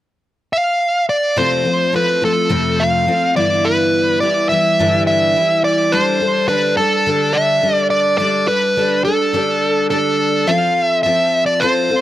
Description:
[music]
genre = rock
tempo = 105 BPM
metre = 4/4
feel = straight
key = unclear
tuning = A4 = 439 Hz
[part]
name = dark smooth lead guitar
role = melody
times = 0.5-12.0 s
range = A4 to F5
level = -14 LUFS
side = right 1 dB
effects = overdrive
[part]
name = picked twelve-string acoustic guitar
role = accompaniment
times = 1.4-12.0 s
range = F2 to A4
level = -18 LUFS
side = left 2 dB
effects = none
[sound]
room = moderate plate reverb, RT60 3.5 s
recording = none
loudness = -13 LUFS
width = side -13 dB against mid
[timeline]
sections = 0.0-1.4 A section; 1.4-10.5 B section; 10.5-12.0 C section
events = none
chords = 0.0 N.C.; 1.4 F; 3.4 G6; 5.9 Dsus4; 10.5 F

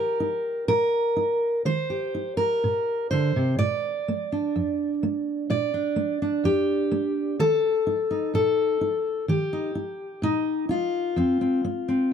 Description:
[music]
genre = folk, solo fingerstyle acoustic guitar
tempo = 63 BPM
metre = 4/4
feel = rubato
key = unclear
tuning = A4 = 440 Hz
[part]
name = fingerpicked steel-string acoustic guitar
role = solo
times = 0.0-12.1 s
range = F2 to D5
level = -22 LUFS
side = equal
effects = none
[sound]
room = small room ambience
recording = dry, close 1970s-style studio recording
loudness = -22 LUFS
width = side -7 dB against mid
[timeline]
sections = 0.0-12.1 A section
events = none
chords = 0.0 Eb; 3.6 Bb; 7.4 Eb; 11.2 F5

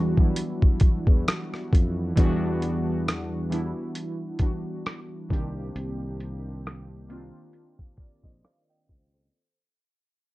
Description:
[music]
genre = lo-fi hip hop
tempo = 67 BPM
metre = 4/4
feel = swing 55% on 16ths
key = unclear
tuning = A4 = 440 Hz
[part]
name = warbly lo-fi synth keys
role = accompaniment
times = 0.0-9.6 s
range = Eb3 to G5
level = -29 LUFS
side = equal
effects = chorus, cassette tape, low-pass filter, plate reverb
[part]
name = sustaining fretless electric bass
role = bass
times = 0.0-9.3 s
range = Bb1 to F2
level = -32 LUFS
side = equal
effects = none
[part]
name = boom bap sampler-style drum kit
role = drums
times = 0.2-9.1 s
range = hi-hat, kick drum, rim click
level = -21 LUFS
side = equal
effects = none
[sound]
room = light reverb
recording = dark, warm production, low-pass filter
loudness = -23 LUFS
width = side -18 dB against mid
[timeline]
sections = 0.0-2.2 A section; 2.2-9.3 B section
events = fade-out 2.2-9.3; filter sweep 2.2-9.3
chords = 0.0 Em9; 5.3 Cm9

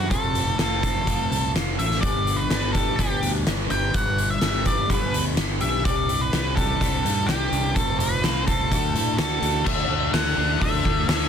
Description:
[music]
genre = quiet-loud alternative rock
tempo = 126 BPM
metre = 4/4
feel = straight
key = G major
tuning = A4 = 445 Hz
[part]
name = octave-fuzz lead guitar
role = melody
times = 0.0-11.3 s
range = G4 to G5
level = -26 LUFS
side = equal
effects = distortion, digital delay
[part]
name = electric guitar through a small old amp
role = arpeggios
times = 0.0-11.3 s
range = F2 to G4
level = -30 LUFS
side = left 1 dB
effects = phaser
[part]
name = fuzz fingered electric bass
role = bass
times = 0.0-11.3 s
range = F1 to A2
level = -27 LUFS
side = right 1 dB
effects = overdrive
[part]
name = oversized low-tuned drum kit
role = drums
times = 0.1-11.2 s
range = crash cymbal, hi-hat, kick drum, snare drum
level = -24 LUFS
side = equal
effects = none
[part]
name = scooped high-gain guitar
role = riff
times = 9.6-11.3 s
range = D3 to D4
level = -28 LUFS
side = left 15 dB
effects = distortion
[sound]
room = little or no reverb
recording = dense, heavily limited modern master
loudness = -20 LUFS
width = side -8 dB against mid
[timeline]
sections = 0.0-9.7 A section; 9.7-11.3 B section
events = none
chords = 0.1 F; 2.0 G; 5.8 Cadd9; 7.8 F; 8.7 D; 9.7 Dadd9

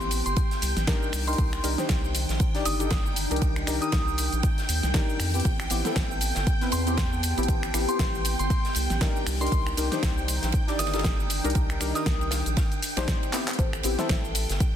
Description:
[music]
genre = deep house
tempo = 118 BPM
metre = 4/4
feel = swing 57% on 16ths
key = A minor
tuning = A4 = 440 Hz
[part]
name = soft synth bell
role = melody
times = 0.0-12.4 s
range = C6 to Eb6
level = -34 LUFS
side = equal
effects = chorus, digital delay
[part]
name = deep mellow chord stab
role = stabs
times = 0.0-14.7 s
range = B3 to D5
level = -31 LUFS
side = left 2 dB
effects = chorus, sidechain pumping, tape echo
[part]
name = round analog bass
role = bass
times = 0.0-14.6 s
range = G1 to F2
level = -29 LUFS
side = equal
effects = sidechain pumping
[part]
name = deep house drum kit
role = drums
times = 0.0-14.7 s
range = cabasa, finger snaps, handclaps, hi-hat, snare drum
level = -31 LUFS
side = equal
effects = soft clipping on snare
[part]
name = deep dark ambient pad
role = texture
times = 0.0-14.8 s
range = Eb3 to Bb5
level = -37 LUFS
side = right 1 dB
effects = chorus, built-in reverb, sidechain pumping
[part]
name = string machine, violins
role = texture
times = 0.0-14.8 s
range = G5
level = -36 LUFS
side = right 1 dB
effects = ensemble chorus
[part]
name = big rock drum kit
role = drums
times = 0.1-14.7 s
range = hi-hat, ride cymbal, snare drum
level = -37 LUFS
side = right 2 dB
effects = sidechain pumping on cymbals, high-pass filter on cymbals, sidechain pumping on hats, high-pass filter on hats, high-pass filter on snare, high-pass filter on room
[part]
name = electronic kick drum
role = drums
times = 0.4-14.7 s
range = none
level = -26 LUFS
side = equal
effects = none
[part]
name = soft round pluck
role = melody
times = 13.6-14.2 s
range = A4 to E5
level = -36 LUFS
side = left 4 dB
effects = chorus, cassette tape, digital delay
[sound]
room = light reverb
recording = dense, heavily limited modern master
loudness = -23 LUFS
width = side -10 dB against mid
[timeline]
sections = 0.0-14.8 A section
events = drum fill 13.3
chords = 0.0 Am9; 1.1 Cm9; 5.5 Am9

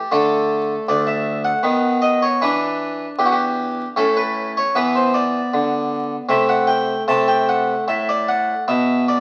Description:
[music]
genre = classical, baroque-style suite movement for harpsichord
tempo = 77 BPM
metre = 3/4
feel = rubato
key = D major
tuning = A4 = 440 Hz
[part]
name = harpsichord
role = solo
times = 0.0-9.2 s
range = D2 to A5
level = -19 LUFS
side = equal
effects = none
[sound]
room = wet stone room reverb, RT60 1.2 s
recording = very old 78 rpm record, vinyl crackle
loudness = -19 LUFS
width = mono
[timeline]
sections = 0.0-9.2 A section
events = none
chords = 0.1 D5; 1.6 B/D#; 2.4 Em7; 4.0 A; 4.7 E5; 6.3 Am/C; 7.1 Am6; 8.7 N.C.

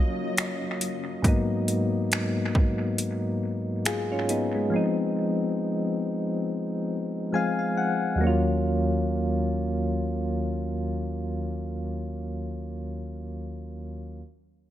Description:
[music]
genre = contemporary R&B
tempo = 69 BPM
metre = 4/4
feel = swing 58% on 16ths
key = Eb minor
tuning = A4 = 440 Hz
[part]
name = soft electric-piano-like synth keys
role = accompaniment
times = 0.0-14.2 s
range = Eb2 to Ab5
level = -26 LUFS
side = left 1 dB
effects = chorus, tremolo
[part]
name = granular cloud pad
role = sustained chords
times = 0.0-1.2 s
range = Gb3 to Eb5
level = -38 LUFS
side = left 1 dB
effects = built-in reverb
[part]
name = trap drum kit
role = drums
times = 0.4-4.5 s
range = finger snaps, hi-hat, kick drum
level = -26 LUFS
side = equal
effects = overdrive, analog delay
[sound]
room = light reverb, digital ambience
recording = echo-heavy mix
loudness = -25 LUFS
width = side -12 dB against mid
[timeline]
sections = 0.0-8.2 A section; 8.2-11.7 B section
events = synth keys fill 6.9-8.2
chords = 0.0 Ebm9; 1.2 Abm7; 4.7 Fm7; 8.2 Ebm9

